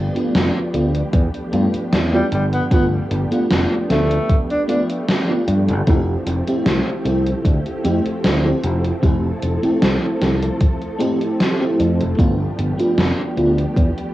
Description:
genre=vaporwave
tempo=76 BPM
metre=4/4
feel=straight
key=unclear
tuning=A4 = 440 Hz
part: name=soft string machine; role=sustained chords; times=0.0-14.1 s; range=F3 to A4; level=-25 LUFS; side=equal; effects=ensemble chorus, vintage 12-bit sampler grit, cassette tape
part: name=fingered electric bass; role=bass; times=0.0-13.9 s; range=F1 to G2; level=-19 LUFS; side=equal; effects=tube saturation
part: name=FM electric piano with soft pad layer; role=accompaniment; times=0.1-13.5 s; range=A3 to G4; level=-21 LUFS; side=equal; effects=ensemble chorus, cassette tape, analog delay
part: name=gated 80s digital drum machine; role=drums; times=0.2-14.1 s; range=hi-hat, snare drum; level=-21 LUFS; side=equal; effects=gated reverb, gated reverb snare, overdrive
part: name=electronic kick drum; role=drums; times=1.1-13.9 s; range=none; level=-16 LUFS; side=equal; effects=overdrive
part: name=clear tenor saxophone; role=melody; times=2.1-4.8 s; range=G3 to D4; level=-23 LUFS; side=equal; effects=vintage 12-bit sampler grit, cassette tape, tape echo
room=light reverb, digital ambience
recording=home recording on cassette, small room ambience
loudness=-16 LUFS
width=side -15 dB against mid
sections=0.0-14.1 A section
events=none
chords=0.0 G9; 5.9 Fmaj9; 12.2 G9

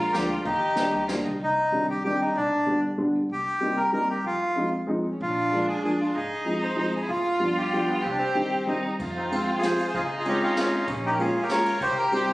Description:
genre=musette waltz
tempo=191 BPM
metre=3/4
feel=straight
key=C minor, F minor from 9.0 s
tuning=A4 = 440 Hz
part: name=bandoneon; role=melody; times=0.0-12.3 s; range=B3 to Db5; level=-25 LUFS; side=equal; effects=none
part: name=rich violin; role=second line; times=0.0-1.4, 5.1-12.3 s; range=Db4 to G4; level=-29 LUFS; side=right 1 dB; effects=none
part: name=dark upright piano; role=accompaniment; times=0.1-12.3 s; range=D3 to G4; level=-27 LUFS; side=equal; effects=none
part: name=upright bass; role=bass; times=0.1-12.2 s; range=G1 to F2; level=-38 LUFS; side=equal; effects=none
part: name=jazz brush drum kit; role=drums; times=0.1-1.2, 9.0-12.2 s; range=hi-hat, kick drum, ride cymbal, snare drum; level=-36 LUFS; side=equal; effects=none
room=moderate studio reverb, RT60 0.5 s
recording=recorded on a phone in the room, studio reverb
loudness=-23 LUFS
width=side -19 dB against mid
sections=0.0-1.4 A section; 1.4-9.0 B section; 9.0-12.3 C section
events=none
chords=0.5 Ebmaj7; 1.4 Cmadd9; 2.4 G/B; 3.3 Cm7; 4.2 Fm7; 5.2 Bb7; 6.2 Fm7/Ab; 7.1 G7; 8.0 Cm; 9.0 Fm; 9.9 Dbmaj7; 10.9 Bbm7; 11.8 C

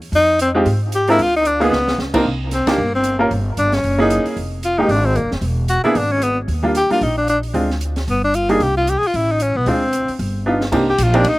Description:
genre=jazz, small-group swing and bop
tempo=227 BPM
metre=4/4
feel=swing 58% on 8ths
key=C minor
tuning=A4 = 440 Hz
part: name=upright bass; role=bass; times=0.0-11.4 s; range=E1 to Ab2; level=-21 LUFS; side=equal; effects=none
part: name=open jazz drum kit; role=drums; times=0.0-11.3 s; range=crash cymbal, hi-hat, kick drum, ride cymbal, snare drum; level=-29 LUFS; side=right 1 dB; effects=none
part: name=warm tenor saxophone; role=melody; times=0.2-11.4 s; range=Bb3 to Ab4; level=-17 LUFS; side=left 1 dB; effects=slapback echo
part: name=clear upright piano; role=accompaniment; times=0.5-11.2 s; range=G3 to Bb4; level=-18 LUFS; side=right 1 dB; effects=slapback echo
room=little or no reverb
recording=recorded outdoors, with no room sound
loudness=-15 LUFS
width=side -19 dB against mid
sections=0.0-2.2 A section; 2.2-10.7 B section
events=drum fill 1.7, 10.5; band accent 2.6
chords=0.1 Fm7; 1.2 Ddim; 1.7 Dbsus2; 2.2 C7(no3); 3.3 G5; 3.8 F#9; 4.4 Fmadd9; 5.4 E; 6.5 Ebmaj7; 7.5 Dm7b5; 8.1 G5; 8.6 Csus4; 9.1 Aadd9; 9.7 Dm7b5; 10.2 G7b13; 10.7 Cm9

